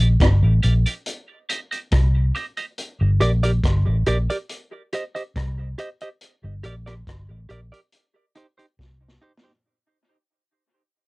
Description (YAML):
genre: dub reggae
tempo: 70 BPM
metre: 4/4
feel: straight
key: unclear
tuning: A4 = 440 Hz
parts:
  - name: semi-hollow electric guitar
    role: accompaniment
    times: 0.0-9.5 s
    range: Eb4 to Eb5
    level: -26 LUFS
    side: right 2 dB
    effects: high-pass filter, cassette tape, dub echo
  - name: vintage muted fingered electric bass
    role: bass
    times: 0.0-9.2 s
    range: G1 to C2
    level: -18 LUFS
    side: equal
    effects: none
  - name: vintage drum kit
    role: drums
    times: 0.0-9.6 s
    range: hi-hat, kick drum, rim click, snare drum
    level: -23 LUFS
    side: equal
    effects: none
room: light reverb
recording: home recording on cassette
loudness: -19 LUFS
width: side -26 dB against mid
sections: 0.0-9.6 A section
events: fade-out 0.0-9.6; filter sweep on clean electric guitar 0.0-2.8; drum fill 8.8-9.6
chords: 0.0 Gm; 1.1 Cm; 2.8 Gm; 4.5 Cm; 6.2 Gm; 7.9 Cm